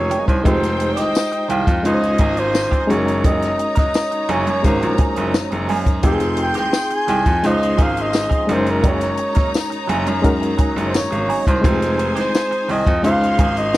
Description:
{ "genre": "lush 1970s-style soul", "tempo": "86 BPM", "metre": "4/4", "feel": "straight", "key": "unclear", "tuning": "A4 = 441 Hz", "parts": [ { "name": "breathy flugelhorn", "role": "melody", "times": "0.0-13.8 s", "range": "Bb4 to Ab5", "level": "-21 LUFS", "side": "equal", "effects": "none" }, { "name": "rich studio string section", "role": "second line", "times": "0.0-13.8 s", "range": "Eb4 to G6", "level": "-27 LUFS", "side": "equal", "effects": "none" }, { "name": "barky reed electric piano", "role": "accompaniment", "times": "0.0-13.8 s", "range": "Ab3 to C5", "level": "-23 LUFS", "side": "left 1 dB", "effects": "overdrive, fast tremolo" }, { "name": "bright baby grand piano", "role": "bass", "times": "0.0-13.8 s", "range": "F1 to Gb2", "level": "-22 LUFS", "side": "right 1 dB", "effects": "none" }, { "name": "semi-hollow electric guitar", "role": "riff", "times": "0.1-13.8 s", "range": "Eb3 to Bb4", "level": "-26 LUFS", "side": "right 6 dB", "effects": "wah" }, { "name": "compact cocktail drum kit", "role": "drums", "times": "0.1-13.8 s", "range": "hi-hat, kick drum, snare drum", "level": "-19 LUFS", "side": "equal", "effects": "none" }, { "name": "tambourine", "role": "percussion", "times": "1.1-13.8 s", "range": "none", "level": "-31 LUFS", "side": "left 13 dB", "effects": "none" } ], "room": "little or no reverb", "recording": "dry, close 1970s-style studio recording", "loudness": "-15 LUFS", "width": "side -16 dB against mid", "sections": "0.0-13.8 A section", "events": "none", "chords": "0.5 Fm9; 1.9 Dbmaj9; 2.9 Gb69; 6.0 Fm9; 7.4 Dbmaj9; 8.5 Gb69; 11.6 Fm9; 13.0 Dbmaj9" }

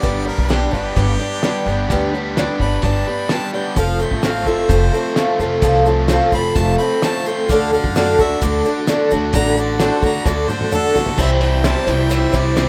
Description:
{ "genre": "folk rock and heartland rock", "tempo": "129 BPM", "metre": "4/4", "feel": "straight", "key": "G mixolydian", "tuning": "A4 = 440 Hz", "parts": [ { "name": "clear harmonica", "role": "melody", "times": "0.0-12.7 s", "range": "G4 to B5", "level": "-29 LUFS", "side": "equal", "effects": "none" }, { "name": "picked twelve-string acoustic guitar", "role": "accompaniment", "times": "0.0-12.7 s", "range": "G2 to C5", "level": "-21 LUFS", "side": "equal", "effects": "none" }, { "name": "cranked stack guitar", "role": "riff", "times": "0.0-12.7 s", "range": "C3 to F#4", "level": "-26 LUFS", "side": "equal", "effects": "overdrive" }, { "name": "upright bass", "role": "bass", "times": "0.0-12.7 s", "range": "F1 to F#2", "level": "-22 LUFS", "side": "equal", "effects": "none" }, { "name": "cloth-damped thuddy drum kit", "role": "drums", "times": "0.0-12.7 s", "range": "crash cymbal, hi-hat, kick drum, ride cymbal, snare drum, toms", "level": "-24 LUFS", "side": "equal", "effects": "none" }, { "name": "tonewheel organ", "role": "sustained chords", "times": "3.8-12.7 s", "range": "A3 to D5", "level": "-31 LUFS", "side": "equal", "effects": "none" }, { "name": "tube shaker", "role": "percussion", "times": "3.8-12.7 s", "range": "none", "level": "-40 LUFS", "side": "equal", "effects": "none" } ], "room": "little or no reverb", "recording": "rough home demo mix", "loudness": "-17 LUFS", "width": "mono", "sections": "0.0-11.2 A section; 11.2-12.7 B section", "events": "harmonica solo 0.0-11.2; drum fill 10.3-11.2", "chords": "0.0 G; 3.8 F; 7.5 D; 11.2 C" }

